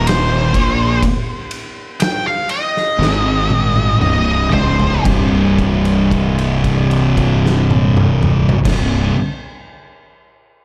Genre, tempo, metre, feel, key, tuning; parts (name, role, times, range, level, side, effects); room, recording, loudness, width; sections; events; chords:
stoner and doom metal; 57-63 BPM; 4/4; straight; C minor; A4 = 440 Hz
octave-fuzz lead guitar; melody; 0.0-5.0 s; C5 to G5; -22 LUFS; equal; wah, distortion, tape echo
thick fuzz guitar; riff; 0.0-9.1 s; C2 to Bb3; -21 LUFS; equal; distortion
thick fuzz guitar; riff; 0.0-9.1 s; C2 to Bb3; -20 LUFS; equal; distortion
fuzz fingered electric bass; bass; 0.0-9.1 s; C1 to Bb1; -22 LUFS; equal; overdrive
oversized low-tuned drum kit; drums; 0.1-8.9 s; crash cymbal, kick drum, ride cymbal, snare drum, toms; -22 LUFS; equal
light reverb, small room reverb; -15 LUFS; mono
0.0-5.1 A section; 5.1-9.3 B section
slowing down 0.0-5.1; lead electric guitar solo 0.0-5.1; drum fill 3.0-5.1; held note 5.1-8.6
0.0 Eb5; 0.5 Bbsus4; 3.0 Ab5; 4.0 Cm; 5.1 C5